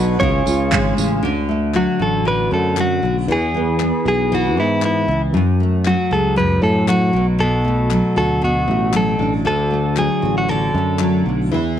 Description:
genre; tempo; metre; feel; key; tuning
acoustic pop; 117 BPM; 4/4; swing 55% on 16ths; unclear; A4 = 435 Hz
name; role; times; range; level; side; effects
direct-recorded clean electric guitar; melody; 0.0-11.3 s; E4 to C#5; -20 LUFS; equal; none
nylon-string guitar; accompaniment; 0.0-11.8 s; F#2 to G#4; -18 LUFS; equal; double-tracked left and right
hand-pumped harmonium; sustained chords; 0.0-1.2 s; C#3 to G#4; -28 LUFS; equal; none
sustaining fretless electric bass; bass; 0.0-11.8 s; G#1 to A2; -20 LUFS; equal; none
punchy analog drum machine; drums; 0.2-1.1 s; handclaps, kick drum, tambourine; -22 LUFS; right 2 dB; none
group handclap; percussion; 0.7-11.1 s; none; -30 LUFS; left 12 dB; none
room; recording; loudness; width
light reverb, studio ambience; 1960s-style stereo; -15 LUFS; side -10 dB against mid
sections
0.0-1.2 A section; 1.2-11.8 B section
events
none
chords
0.2 C#; 1.2 D; 3.3 E; 5.3 F#madd9; 7.1 Bm7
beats
0.21 0.72 | 1.24 1.75 2.26 2.78 | 3.29 3.80 4.32 4.83 | 5.34 5.86 6.37 6.89 | 7.40 7.92 8.43 8.94 | 9.46 9.97 10.49 11.00 | 11.52

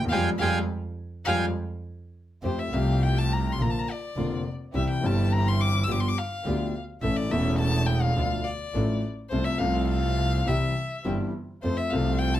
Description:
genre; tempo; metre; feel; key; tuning
tango; 104 BPM; 4/4; rubato; F major; A4 = 440 Hz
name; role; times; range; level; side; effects
bandoneon; melody; 0.0-1.5 s; F5 to Ab5; -27 LUFS; right 4 dB; none
warm concert grand piano; accompaniment; 0.0-12.4 s; E1 to A4; -28 LUFS; left 2 dB; none
clear double bass; bass; 0.0-12.4 s; E1 to F2; -28 LUFS; right 2 dB; none
warm violin; second line; 0.1-12.4 s; C5 to E6; -31 LUFS; left 3 dB; none
dark studio string section; stabs; 0.1-12.4 s; A3 to A4; -37 LUFS; right 1 dB; none
room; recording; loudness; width
moderate club reverb, RT60 0.7 s; none; -24 LUFS; side -12 dB against mid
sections
0.0-2.4 A section; 2.4-12.4 B section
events
band accent 0.1-2.4; violin solo 2.4-12.4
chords
0.1 Fmadd9; 2.4 Fadd9; 3.6 Bb; 4.7 C; 5.9 G7; 7.0 A; 8.2 Dm; 9.3 F/C; 10.5 C; 11.6 F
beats
| 0.11 0.68 1.26 1.84 | 2.43 3.01 3.58 4.16 | 4.74 5.31 5.88 6.45 | 7.02 7.59 8.16 8.74 | 9.31 9.88 10.46 11.05 | 11.63 12.22

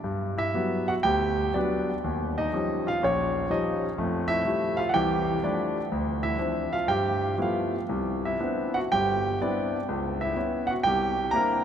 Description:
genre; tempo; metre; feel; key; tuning
solo jazz; 123 BPM; 4/4; swing 66% on 8ths, rubato; unclear; A4 = 438 Hz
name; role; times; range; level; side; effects
warm concert grand piano; solo; 0.0-11.6 s; G1 to Bb5; -24 LUFS; equal; none
room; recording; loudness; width
wet cathedral reverb, RT60 6.4 s; recorded in a church or concert hall; -24 LUFS; side -8 dB against mid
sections
0.0-11.6 A section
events
none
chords
0.0 Gmaj7; 2.0 D#9; 4.0 Fmaj9; 5.9 Dm9; 6.9 G13; 7.9 Cmaj9; 9.9 C#m; 10.9 C9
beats
| 0.05 0.55 1.06 1.56 | 2.05 2.54 3.02 3.51 | 4.00 4.47 4.95 5.44 | 5.91 6.40 6.89 7.40 | 7.91 8.42 8.92 9.42 | 9.90 10.38 10.86 11.35

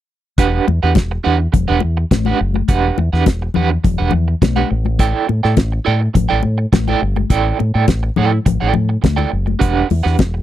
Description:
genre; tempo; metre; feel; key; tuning
disco; 104 BPM; 4/4; straight; E minor; A4 = 437 Hz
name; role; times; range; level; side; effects
electric guitar at the edge of break-up; accompaniment; 0.4-10.4 s; D4 to G5; -18 LUFS; right 8 dB; tremolo
fingered electric bass with an envelope filter; bass; 0.4-10.4 s; E1 to A2; -17 LUFS; equal; none
damped 70s drum kit; drums; 0.4-10.3 s; hi-hat, kick drum, snare drum; -13 LUFS; equal; none
congas; percussion; 0.4-10.3 s; none; -21 LUFS; left 11 dB; none
room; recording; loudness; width
little or no reverb; dry, close 1970s-style studio recording; -13 LUFS; side -12 dB against mid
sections
0.4-10.4 A section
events
none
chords
0.4 Em9; 4.7 A7sus4; 9.6 Em9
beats
| 0.38 0.95 1.53 2.11 | 2.69 3.26 3.84 4.42 | 5.00 5.57 6.15 6.73 | 7.30 7.88 8.46 9.04 | 9.61 10.19

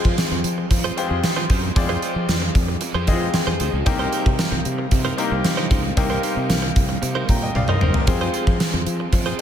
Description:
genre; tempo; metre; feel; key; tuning
1980s-style pop; 114 BPM; 4/4; straight; F minor; A4 = 438 Hz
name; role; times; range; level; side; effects
bright grand piano; accompaniment; 0.0-9.4 s; C3 to Bb5; -26 LUFS; left 4 dB; shimmer reverb
overdriven semi-hollow guitar; accompaniment; 0.0-9.4 s; C3 to F4; -29 LUFS; right 4 dB; ensemble chorus, shimmer reverb
direct-recorded clean electric guitar; riff; 0.0-9.4 s; Eb4 to C5; -29 LUFS; right 4 dB; wide subtle chorus, analog delay, shimmer reverb
sustaining fretless electric bass; bass; 0.0-9.3 s; Gb1 to F3; -24 LUFS; equal; none
gated 80s drum kit; drums; 0.0-9.4 s; hi-hat, kick drum, snare drum, tambourine, toms; -20 LUFS; equal; none
room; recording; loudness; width
moderate lush hall reverb, RT60 2.0 s; dreamy mix soaked in reverb; -18 LUFS; side -9 dB against mid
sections
0.0-9.4 A section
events
drum fill 7.5-8.1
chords
0.0 Fm; 3.9 Cm7; 8.1 Fm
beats
0.18 0.71 1.24 | 1.76 2.29 2.81 3.34 | 3.87 4.39 4.92 5.45 | 5.97 6.50 7.02 7.55 | 8.08 8.60 9.13

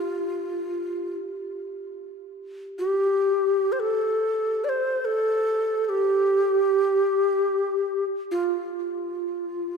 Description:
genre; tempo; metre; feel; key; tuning
world meditative, free-time meditation music; free time; none; none; unclear; A4 = 440 Hz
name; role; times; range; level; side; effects
breathy low Native American-style wooden flute; melody; 0.0-9.8 s; F4 to D5; -22 LUFS; equal; ping-pong delay
bronze singing bowl; texture; 0.0-4.7 s; G4; -39 LUFS; right 3 dB; none
room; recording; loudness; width
wet church reverb, RT60 3.0 s; none; -22 LUFS; side -5 dB against mid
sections
0.0-9.8 A section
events
none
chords
none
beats
free time

